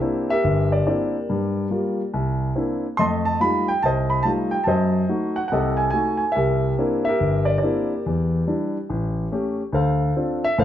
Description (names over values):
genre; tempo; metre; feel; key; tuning
solo jazz; 142 BPM; 4/4; swing 67% on 8ths; unclear; A4 = 444 Hz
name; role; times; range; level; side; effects
dark concert grand piano; solo; 0.0-10.6 s; G1 to C6; -19 LUFS; equal; none
room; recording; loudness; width
moderate large studio reverb, RT60 1.3 s; none; -19 LUFS; side -11 dB against mid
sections
0.0-10.6 A section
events
none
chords
0.0 C9; 1.3 Gm7; 2.1 C9; 3.0 F9; 4.7 F#dim7; 6.4 C9; 8.0 Em7; 8.9 A7; 9.7 Dm7